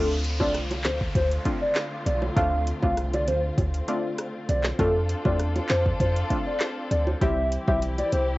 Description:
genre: dancehall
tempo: 99 BPM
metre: 4/4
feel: straight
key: D dorian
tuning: A4 = 439 Hz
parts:
  - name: hollow clarinet-like synth lead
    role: melody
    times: 0.0-8.3 s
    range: A4 to F5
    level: -27 LUFS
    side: equal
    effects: chorus, phaser, cassette tape
  - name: glassy wavetable pluck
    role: accompaniment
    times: 0.0-7.8 s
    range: G3 to G4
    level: -30 LUFS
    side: equal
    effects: chorus, cassette tape
  - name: dark studio string section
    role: sustained chords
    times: 0.0-8.4 s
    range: D3 to A4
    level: -34 LUFS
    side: left 1 dB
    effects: cassette tape
  - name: clean 808-style bass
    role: bass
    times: 0.0-8.4 s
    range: B1 to F2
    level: -26 LUFS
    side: equal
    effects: none
  - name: downlifter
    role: sound effects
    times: 0.0-4.8 s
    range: none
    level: -39 LUFS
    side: equal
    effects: none
  - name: afro-pop drum kit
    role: drums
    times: 0.2-8.3 s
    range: handclaps, hi-hat, kick drum, rim click, snare drum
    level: -29 LUFS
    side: equal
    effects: overdrive, cassette tape
  - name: bongos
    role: percussion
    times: 0.4-8.3 s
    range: none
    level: -33 LUFS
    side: right 2 dB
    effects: none
room: little or no reverb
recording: home recording on cassette, nothing above 7.8 kHz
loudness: -22 LUFS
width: side -19 dB against mid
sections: 0.0-8.4 A section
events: none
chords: 0.0 Dm7; 4.8 F6; 7.2 C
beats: 0.55 1.15 1.76 | 2.37 2.97 3.58 4.18 | 4.79 5.40 6.00 6.61 | 7.21 7.82

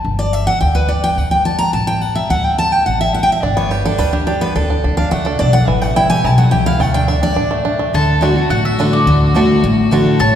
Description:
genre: bluegrass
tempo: 213 BPM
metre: 4/4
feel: straight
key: D major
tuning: A4 = 440 Hz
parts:
  - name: upright bass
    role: bass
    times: 0.0-10.4 s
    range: G1 to D2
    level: -18 LUFS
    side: equal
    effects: none
  - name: picked steel-string acoustic guitar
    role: accompaniment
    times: 0.2-10.4 s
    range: A2 to Bb5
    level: -15 LUFS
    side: left 1 dB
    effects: none
  - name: bluegrass banjo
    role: melody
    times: 3.4-10.0 s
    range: E3 to G4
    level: -21 LUFS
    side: right 4 dB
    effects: none
  - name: mandolin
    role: melody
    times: 7.9-10.4 s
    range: D5 to A5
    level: -19 LUFS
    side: left 2 dB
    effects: none
  - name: clear fiddle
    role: second line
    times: 7.9-10.4 s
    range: F#4 to C#5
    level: -23 LUFS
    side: left 1 dB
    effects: none
room: wet church reverb, RT60 3.2 s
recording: recorded in a church or concert hall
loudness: -12 LUFS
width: side -9 dB against mid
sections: 0.0-7.9 A section; 7.9-10.4 B section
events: steel-string acoustic guitar solo 0.0-7.9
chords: 0.0 G5; 1.2 D5; 3.4 G; 4.6 D5; 5.7 A; 6.8 D5; 7.9 D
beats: | 0.05 0.33 0.62 0.90 | 1.18 1.46 1.74 2.02 | 2.31 2.59 2.87 3.15 | 3.43 3.72 4.00 4.28 | 4.56 4.84 5.12 5.41 | 5.69 5.97 6.25 6.53 | 6.82 7.10 7.38 7.66 | 7.94 8.22 8.51 8.79 | 9.07 9.35 9.64 9.92 | 10.20

